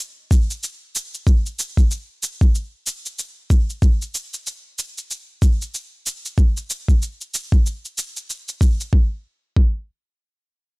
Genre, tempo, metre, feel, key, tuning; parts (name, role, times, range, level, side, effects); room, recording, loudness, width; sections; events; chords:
organic downtempo; 94 BPM; 4/4; swing 59% on 16ths
shaker; drums; 0.0-8.9 s; -27 LUFS; right 1 dB
electronic kick drum; drums; 0.3-9.8 s; -14 LUFS; equal
little or no reverb; blown-out, overdriven recording, overdrive; -19 LUFS; side -27 dB against mid
0.0-8.9 A section; 8.9-10.8 B section